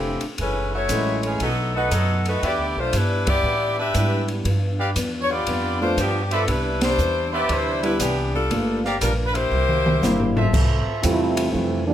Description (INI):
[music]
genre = jazz, big band swing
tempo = 118 BPM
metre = 4/4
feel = swing 67% on 8ths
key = C major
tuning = A4 = 440 Hz
[part]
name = edgy saxophone section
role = melody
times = 0.0-10.4 s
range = E3 to E5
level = -23 LUFS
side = left 1 dB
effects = none
[part]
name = picked steel-string acoustic guitar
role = accompaniment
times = 0.0-11.9 s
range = F2 to G4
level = -31 LUFS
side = left 3 dB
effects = none
[part]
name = upright bass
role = bass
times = 0.0-11.9 s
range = F1 to A2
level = -25 LUFS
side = right 1 dB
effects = none
[part]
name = open jazz drum kit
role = drums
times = 0.2-11.7 s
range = crash cymbal, hi-hat, kick drum, ride cymbal, snare drum, toms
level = -27 LUFS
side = equal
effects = none
[part]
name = warm grand piano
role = accompaniment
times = 0.9-11.8 s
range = C3 to F4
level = -26 LUFS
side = equal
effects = none
[part]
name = warm trumpet section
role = stabs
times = 1.7-11.0 s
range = F4 to F#5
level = -26 LUFS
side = right 1 dB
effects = none
[part]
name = muted trombone section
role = second line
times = 11.0-11.9 s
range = E3 to F4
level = -21 LUFS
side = right 3 dB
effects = none
[sound]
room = moderate large studio reverb, RT60 0.9 s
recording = none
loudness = -19 LUFS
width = side -11 dB against mid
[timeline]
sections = 0.0-10.5 A section; 10.5-11.9 B section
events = band accent 3.2, 6.7; drum fill 9.5-10.5; trombone section solo 10.5-11.9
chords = 0.4 F#m7; 1.4 B7; 2.4 Em7; 4.5 G7; 6.5 Cmaj9; 8.5 Gm7; 9.5 C7; 10.5 Fmaj7